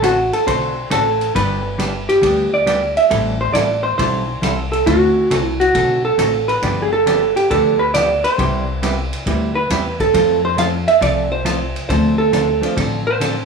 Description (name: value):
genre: country, western swing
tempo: 136 BPM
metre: 4/4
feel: swing 68% on 8ths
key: unclear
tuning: A4 = 440 Hz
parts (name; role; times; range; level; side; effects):
- vintage hollow-body jazz guitar; melody; 0.0-13.4 s; F#4 to F5; -16 LUFS; right 2 dB; none
- hollow-body jazz guitar; accompaniment; 0.0-13.3 s; C3 to A4; -22 LUFS; right 1 dB; none
- upright bass; bass; 0.0-13.4 s; G1 to F2; -22 LUFS; left 2 dB; none
- swinging big-band drum kit; drums; 0.0-13.4 s; hi-hat, kick drum, ride cymbal; -26 LUFS; equal; none
- clear upright piano; accompaniment; 12.6-12.8 s; F3 to F4; -26 LUFS; left 3 dB; none
room: light reverb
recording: studio reverb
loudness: -14 LUFS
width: side -5 dB against mid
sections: 0.0-13.4 A section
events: none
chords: 0.0 D7/A; 1.4 G; 3.1 Am7; 4.9 D7; 6.6 G7; 8.4 Cmaj7; 10.1 F; 11.9 Dm7